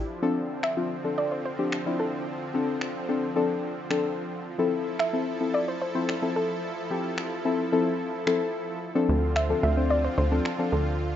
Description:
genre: dance-pop.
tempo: 110 BPM.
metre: 4/4.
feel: straight.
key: D minor.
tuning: A4 = 440 Hz.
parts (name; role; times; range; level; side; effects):
supersaw pad; sustained chords; 0.0-11.2 s; D3 to A4; -33 LUFS; right 2 dB; none.
plucky analog bass; bass; 0.0, 9.1-11.2 s; D2; -25 LUFS; right 1 dB; none.
deep mellow chord stab; accompaniment; 0.2-11.1 s; F3 to C5; -27 LUFS; left 3 dB; chorus.
soft round pluck; melody; 0.6-11.2 s; A4 to E5; -30 LUFS; right 1 dB; chorus, ping-pong delay.
electronic finger snaps; drums; 0.6-10.6 s; none; -35 LUFS; equal; none.
room: light reverb.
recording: rough home demo mix, nothing above 7.6 kHz.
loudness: -25 LUFS.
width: side -10 dB against mid.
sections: 0.1-11.2 A section.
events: none.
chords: 0.1 Dm7; 4.5 Fmaj7; 8.8 Dm7.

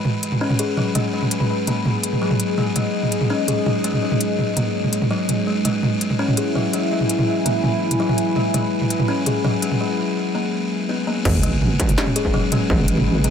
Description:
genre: half-time drum and bass.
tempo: 166 BPM.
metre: 4/4.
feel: half-time.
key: G# minor.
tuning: A4 = 441 Hz.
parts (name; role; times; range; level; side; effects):
deep dark ambient pad; sustained chords; 0.0-13.3 s; G#3 to B5; -25 LUFS; equal; chorus, built-in reverb, sidechain pumping.
buzzing kalimba; arpeggios; 0.0-13.3 s; F#3 to G#4; -22 LUFS; left 3 dB; dub echo.
industrial drum kit; drums; 0.0-13.3 s; crash cymbal, hi-hat, snare drum, toms; -22 LUFS; right 1 dB; none.
deep soft wobble bass; bass; 11.3-13.3 s; G#1; -20 LUFS; right 1 dB; chorus.
electronic kick drum; drums; 11.3-12.8 s; none; -22 LUFS; equal; distortion.
sub drop; sound effects; 11.3-12.7 s; none; -26 LUFS; right 1 dB; none.
room: light reverb, digital ambience.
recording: none.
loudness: -18 LUFS.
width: side -8 dB against mid.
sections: 0.0-11.3 A section; 11.3-13.3 B section.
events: break 9.8-11.3; drop 11.3-13.3; impact 11.3-12.7.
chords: 0.0 G#m; 5.5 E; 11.3 G#m.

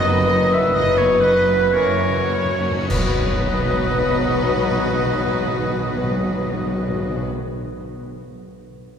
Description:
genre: classical, slow romantic movement for symphony orchestra.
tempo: 49-72 BPM.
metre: 3/4.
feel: rubato.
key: B major.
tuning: A4 = 440 Hz.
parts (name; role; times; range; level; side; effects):
rich chamber violin section; melody; 0.0-7.2 s; A#4 to D#5; -30 LUFS; left 5 dB; none.
bright clarinet; second line; 0.0-7.3 s; A#4 to B4; -32 LUFS; left 2 dB; none.
rich chamber violin section; second line; 0.0-7.3 s; D#4 to F#4; -35 LUFS; left 5 dB; none.
silver concert flute; second line; 0.0-7.2 s; B4 to E5; -29 LUFS; equal; none.
warm oboe; second line; 0.0-7.2 s; B4 to E5; -25 LUFS; equal; none.
rich chamber viola section; accompaniment; 0.0-7.3 s; F#3 to C#4; -31 LUFS; equal; none.
warm bassoon; accompaniment; 0.0-7.3 s; D#3 to F#3; -30 LUFS; left 3 dB; none.
mellow French horn section; sustained chords; 0.0-7.2 s; B3 to B4; -23 LUFS; equal; none.
warm trombone section; sustained chords; 0.0-7.3 s; B2 to B3; -33 LUFS; right 1 dB; none.
dark chamber double bass section; bass; 0.0-7.3 s; F#1 to B1; -27 LUFS; right 3 dB; none.
rich chamber cello section; bass; 0.0-7.3 s; F#2 to B2; -26 LUFS; equal; none.
timpani; percussion; 1.7-7.2 s; F#2 to B2; -25 LUFS; equal; none.
clash cymbals and concert bass drum; percussion; 2.9-5.3 s; none; -30 LUFS; equal; none.
room: wet church reverb, RT60 3.8 s.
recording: recorded in a church or concert hall.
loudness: -17 LUFS.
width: side -7 dB against mid.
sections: 0.0-2.9 A section; 2.9-9.0 B section.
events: slowing down 0.0-2.9; timpani fill 1.8-2.9; band accent 2.9-4.1.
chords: 0.0 B/F#; 1.8 F#7; 2.9 B.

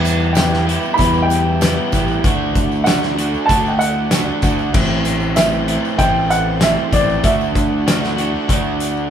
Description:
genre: indie rock.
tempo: 96 BPM.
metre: 4/4.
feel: straight.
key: unclear.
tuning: A4 = 439 Hz.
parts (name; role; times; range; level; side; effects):
soft string machine; sustained chords; 0.1-9.1 s; E4 to A5; -32 LUFS; equal; none.
crunchy overdriven guitar; riff; 0.0-9.1 s; E3 to G4; -22 LUFS; right 7 dB; none.
overdriven electric guitar; riff; 0.0-9.1 s; A2 to F#4; -23 LUFS; left 7 dB; none.
fingered electric bass; bass; 0.0-9.1 s; A1 to E2; -21 LUFS; left 1 dB; none.
tambourine; percussion; 0.0-9.0 s; none; -36 LUFS; right 7 dB; none.
loose indie drum kit; drums; 0.1-9.0 s; crash cymbal, hi-hat, kick drum, snare drum, tambourine; -19 LUFS; equal; none.
dark upright piano; melody; 0.3-9.1 s; D5 to B5; -19 LUFS; right 1 dB; none.
room: moderate large studio reverb, RT60 1.0 s.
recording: band playing live in one room.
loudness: -14 LUFS.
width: side -9 dB against mid.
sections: 0.0-9.1 A section.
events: none.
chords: 0.0 Em; 2.2 Dadd9; 4.7 Am; 7.2 Dadd9.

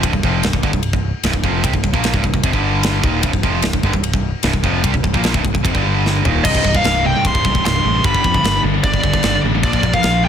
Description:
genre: heavy metal.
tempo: 150 BPM.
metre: 4/4.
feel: straight.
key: C minor.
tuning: A4 = 440 Hz.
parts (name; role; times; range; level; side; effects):
distorted electric guitar; riff; 0.0-10.3 s; C2 to Bb3; -21 LUFS; right 12 dB; overdrive.
sludgy distorted guitar; riff; 0.0-10.3 s; C2 to Bb3; -22 LUFS; left 12 dB; overdrive.
picked electric bass; bass; 0.0-10.3 s; C1 to F2; -21 LUFS; equal; none.
tight metal drum kit; drums; 0.0-10.1 s; china cymbal, crash cymbal, kick drum, ride cymbal, snare drum, toms; -19 LUFS; equal; none.
high-gain lead guitar; melody; 6.4-10.3 s; D5 to C6; -18 LUFS; left 1 dB; distortion.
scooped high-gain guitar; riff; 6.4-10.3 s; C2 to Bb4; -23 LUFS; equal; distortion.
room: little or no reverb.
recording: dense, heavily limited modern master.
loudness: -14 LUFS.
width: side -8 dB against mid.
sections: 0.0-6.4 A section; 6.4-10.3 B section.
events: drum fill 6.0-6.4.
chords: 0.0 C5; 2.5 G5; 3.0 Cm; 5.7 G5; 6.2 Eb5; 6.4 Cm; 8.0 G; 9.6 Bb.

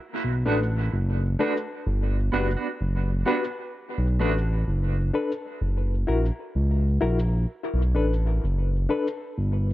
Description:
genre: reggae.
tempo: 64 BPM.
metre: 4/4.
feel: straight.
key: B minor.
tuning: A4 = 441 Hz.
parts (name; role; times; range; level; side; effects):
smooth gliding synth bass; bass; 0.2-9.7 s; F#1 to C#2; -23 LUFS; equal; none.
mellow electric guitar; accompaniment; 0.5-4.3 s; A3 to F#4; -30 LUFS; right 4 dB; tremolo, tape echo.
reed electric piano; stabs; 0.5-9.1 s; D4 to B4; -29 LUFS; left 4 dB; fast tremolo, tape echo.
room: light reverb.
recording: none.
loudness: -23 LUFS.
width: side -16 dB against mid.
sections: 0.0-9.7 A section.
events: none.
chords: 0.0 Bm7; 1.9 Gmaj7; 3.7 Bm7; 5.6 F#7; 7.5 Bm7.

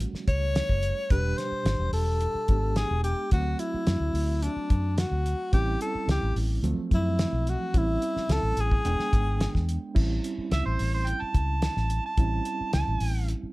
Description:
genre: straight-eighth soul blues.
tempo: 108 BPM.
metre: 4/4.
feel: straight.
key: unclear.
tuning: A4 = 440 Hz.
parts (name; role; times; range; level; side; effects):
overdriven reed electric piano; accompaniment; 0.0-13.5 s; B2 to G5; -34 LUFS; right 4 dB; fast tremolo.
vintage muted fingered electric bass; bass; 0.0-13.5 s; E1 to F#2; -27 LUFS; equal; none.
cloth-damped thuddy drum kit; drums; 0.0-13.4 s; crash cymbal, hi-hat, kick drum, snare drum; -27 LUFS; equal; none.
breathy tenor saxophone; melody; 0.3-9.7 s; D4 to C#5; -30 LUFS; left 1 dB; plate reverb.
mellow harmonica; second line; 10.5-13.3 s; B#4 to A5; -31 LUFS; right 3 dB; overdrive, plate reverb.
room: light reverb.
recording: none.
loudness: -24 LUFS.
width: side -20 dB against mid.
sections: 0.0-10.0 A section; 10.0-13.5 B section.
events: harmonica solo 10.0-13.5.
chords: 0.0 A7; 1.1 E7#9; 3.3 D7; 5.5 A7#9; 6.6 D7#9 (rootless); 7.7 A7#9; 8.9 E7#9; 10.0 A7#9.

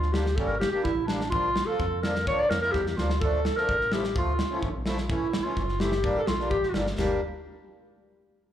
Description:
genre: klezmer.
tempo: 127 BPM.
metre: 2/4.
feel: straight.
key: G dorian sharp4.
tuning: A4 = 442 Hz.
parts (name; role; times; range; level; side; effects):
mellow clarinet; melody; 0.0-7.2 s; D4 to D5; -27 LUFS; equal; slapback echo.
round analog bass; bass; 0.0-7.2 s; F#1 to F2; -30 LUFS; equal; none.
modern studio drum kit; drums; 0.0-7.1 s; crash cymbal, kick drum, snare drum, toms; -31 LUFS; equal; none.
accordion; accompaniment; 0.1-7.2 s; E3 to F4; -33 LUFS; equal; slapback echo.
room: light reverb, small room ambience.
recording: live gig heard through the venue's PA, club reverb.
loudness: -24 LUFS.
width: side -10 dB against mid.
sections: 0.0-7.0 A section.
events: drum fill 2.7-3.2.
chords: 0.0 Gm; 1.3 Bb; 3.2 Dm; 5.1 A; 6.0 Gm.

